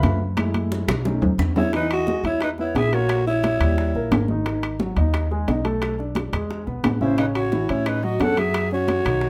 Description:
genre	Afro-Cuban jazz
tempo	176 BPM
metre	4/4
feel	straight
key	E major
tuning	A4 = 440 Hz
part	dark concert grand piano	accompaniment	0.0-9.3 s	C#3 to B5	-29 LUFS	equal	none
part	upright bass	bass	0.0-9.3 s	G#1 to A2	-27 LUFS	equal	none
part	bongos	percussion	0.0-9.3 s	none	-33 LUFS	equal	none
part	congas	percussion	0.0-9.3 s	none	-30 LUFS	equal	none
part	timbales	percussion	0.0-9.2 s	none	-31 LUFS	equal	none
part	claves	percussion	0.4-9.2 s	none	-41 LUFS	equal	none
part	growling alto saxophone	melody	1.6-4.3, 7.0-9.3 s	D#4 to A4	-26 LUFS	equal	none
part	breathy bright jazz flute	second line	1.6-4.3, 7.0-9.3 s	B4 to F#5	-32 LUFS	equal	none
room	moderate club reverb, RT60 0.8 s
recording	none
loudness	-22 LUFS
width	mono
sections	0.0-1.7 A section; 1.7-9.3 B section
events	grand piano solo 0.0-1.7; drum fill 0.4-1.7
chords	0.4 F#m7; 1.1 B9; 1.7 Emaj9; 3.1 A#dim; 3.8 D#7b9; 4.5 G#m7; 5.8 Bm7; 6.5 E; 7.2 A6; 8.5 F#sus4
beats	0.03 | 0.37 0.71 1.05 1.39 | 1.73 2.08 2.42 2.76 | 3.10 3.44 3.78 4.12 | 4.46 4.80 5.14 5.48 | 5.82 6.16 6.50 6.84 | 7.18 7.52 7.86 8.20 | 8.54 8.88 9.22

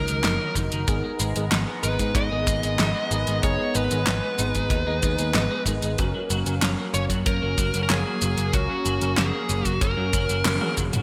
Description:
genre	synthwave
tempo	94 BPM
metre	4/4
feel	straight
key	unclear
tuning	A4 = 441 Hz
part	fuzz lead guitar	melody	0.0-10.7 s	Gb4 to Eb5	-30 LUFS	equal	distortion, delay
part	warm analog pad	sustained chords	0.0-11.0 s	Gb3 to Bb5	-35 LUFS	equal	chorus, sidechain pumping
part	mellow tine electric piano	stabs	0.0-11.0 s	Cb4 to Bb5	-35 LUFS	equal	ensemble chorus, delay
part	picked electric bass	bass	0.0-11.0 s	Gb1 to Ab2	-29 LUFS	equal	none
part	twelve-string electric guitar	riff	0.1-11.0 s	Eb3 to Eb4	-36 LUFS	equal	ensemble chorus, delay
part	pop drum kit	drums	0.1-11.0 s	handclaps, hi-hat, shaker, snare drum, toms	-29 LUFS	equal	overdrive, gated reverb
part	kick drum	drums	0.6-10.9 s	none	-29 LUFS	equal	none
room	light reverb, digital ambience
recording	bright 1980s-style digital production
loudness	-24 LUFS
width	mono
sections	0.0-11.0 A section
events	drum fill 10.5-11.0; band accent 10.5-10.8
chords	0.0 Ebm/Gb; 0.9 Abmadd9; 6.0 Gb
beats	0.24 | 0.88 1.52 2.15 2.79 | 3.43 4.07 4.71 5.35 | 5.98 6.62 7.26 7.90 | 8.54 9.18 9.81 10.45

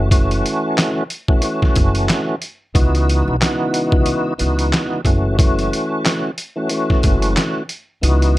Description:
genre	hip hop, boom-bap hip-hop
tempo	91 BPM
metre	4/4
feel	swing 57% on 16ths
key	unclear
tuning	A4 = 438 Hz
part	tonewheel organ	accompaniment	0.0-8.4 s	C#2 to F#4	-19 LUFS	equal	overdrive, chorus vibrato, slow rotary speaker, cassette tape, high-pass filter, low-pass filter
part	upright bass	bass	0.0-8.4 s	F#1 to C#2	-18 LUFS	equal	none
part	trip hop sampler-style drum kit	drums	0.1-8.3 s	handclaps, hi-hat, kick drum, snare drum	-17 LUFS	equal	none
room	little or no reverb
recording	none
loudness	-15 LUFS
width	side -17 dB against mid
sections	0.0-8.4 A section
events	kick muted 8.0-8.4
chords	0.0 F#m7; 2.8 C#m11; 5.1 F#m7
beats	| 0.11 0.77 1.43 2.09 | 2.75 3.41 4.07 4.73 | 5.39 6.05 6.71 7.37 | 8.03

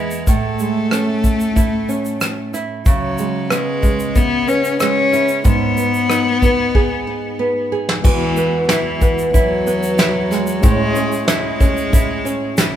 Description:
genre	acoustic pop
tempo	93 BPM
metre	4/4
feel	straight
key	E major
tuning	A4 = 437 Hz
part	warm cello	melody	0.0-12.8 s	E3 to C#4	-19 LUFS	left 3 dB	ping-pong delay
part	nylon-string guitar	accompaniment	0.0-12.8 s	E2 to G#4	-20 LUFS	right 3 dB	none
part	soft brush drum kit	drums	0.1-12.7 s	crash cymbal, kick drum, rim click, shaker, snare drum	-17 LUFS	equal	none
part	reed electric piano	accompaniment	8.0-12.8 s	G#3 to C#5	-26 LUFS	left 4 dB	tremolo
room	light reverb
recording	band playing live in one room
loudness	-14 LUFS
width	side -10 dB against mid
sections	0.0-8.0 A section; 8.0-12.8 B section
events	drum fill 6.7-8.0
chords	0.3 Amaj7; 2.9 C#m7; 5.5 G#m; 8.0 Eadd9; 10.6 Amaj7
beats	| 0.27 0.92 1.57 2.21 | 2.86 3.51 4.16 4.80 | 5.45 6.10 6.75 7.39 | 8.04 8.69 9.34 9.98 | 10.63 11.28 11.93 12.58

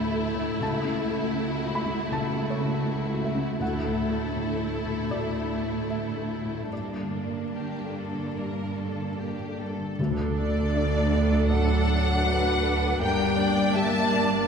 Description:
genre	cinematic, emotional film score for orchestra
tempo	71-81 BPM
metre	4/4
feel	rubato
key	D major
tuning	A4 = 440 Hz
part	rich symphonic violin section	melody	0.0-14.5 s	F#4 to A5	-33 LUFS	left 2 dB	none
part	warm symphonic violin section	second line	0.0-14.5 s	D4 to E5	-33 LUFS	left 2 dB	none
part	felt-muted upright piano	accompaniment	0.0-14.5 s	C#2 to B5	-32 LUFS	left 2 dB	none
part	rich symphonic viola section	accompaniment	0.0-14.5 s	A3 to A4	-33 LUFS	right 1 dB	none
part	warm symphonic cello section	bass	0.0-14.5 s	C#2 to G2	-31 LUFS	right 3 dB	none
part	warm studio double bass section	bass	10.0-14.5 s	G1 to D2	-28 LUFS	right 2 dB	none
part	timpani	percussion	10.0-11.1 s	D3	-32 LUFS	left 2 dB	none
part	mellow hollow silver concert flute	second line	10.4-14.5 s	D5 to A5	-33 LUFS	right 1 dB	none
part	dark French horn section	sustained chords	10.4-14.5 s	D3 to Bb3	-28 LUFS	left 3 dB	none
room	wet concert hall reverb, RT60 2.3 s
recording	heard from further back in the room, faint mains hum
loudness	-24 LUFS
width	side -6 dB against mid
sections	0.0-10.0 A section; 10.0-14.5 B section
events	none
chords	0.0 Dadd9; 0.6 F#m7/C#; 3.6 Dadd9; 6.7 Gmadd9; 10.0 D; 13.0 Gm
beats	| 0.61 1.37 2.12 2.87 | 3.61 4.35 5.11 5.89 | 6.71 7.55 8.37 9.19 | 9.99 10.75 11.50 12.26 | 13.01 13.75

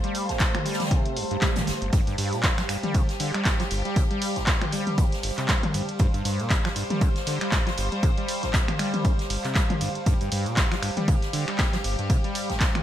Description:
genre	acid house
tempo	118 BPM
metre	4/4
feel	swing 57% on 16ths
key	unclear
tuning	A4 = 445 Hz
part	rich chamber string section	sustained chords	0.0-12.8 s	G3 to C5	-34 LUFS	left 2 dB	sidechain pumping
part	acid bass, saw	riff	0.0-12.8 s	G1 to G3	-30 LUFS	equal	overdrive, analog chorus, vintage 12-bit sampler grit, sidechain pumping, digital delay
part	punchy analog drum machine	drums	0.0-12.8 s	finger snaps, handclaps, hi-hat, ride cymbal, toms	-29 LUFS	equal	studio reverb, gated reverb
part	ethereal airy pad	texture	0.0-12.8 s	G4 to A5	-35 LUFS	right 3 dB	ensemble chorus, built-in reverb, sidechain pumping
part	unplugged drum kit	drums	0.1-12.7 s	hi-hat, snare drum	-37 LUFS	right 1 dB	sidechain pumping on hats, high-pass filter on hats, studio reverb, high-pass filter on snare, high-pass filter on room, gated reverb
part	electronic kick drum	drums	0.4-12.7 s	none	-23 LUFS	equal	studio reverb
part	swell	sound effects	1.1-1.9 s	none	-34 LUFS	right 7 dB	none
room	light reverb, studio reverb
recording	bright 1980s-style digital production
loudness	-22 LUFS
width	side -11 dB against mid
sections	0.0-12.8 A section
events	swell 1.1-1.9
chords	0.0 G7(no3)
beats	0.40 0.91 1.42 | 1.93 2.44 2.94 3.45 | 3.96 4.47 4.98 5.49 | 6.00 6.50 7.01 7.52 | 8.03 8.54 9.05 9.55 | 10.06 10.57 11.08 11.59 | 12.10 12.61

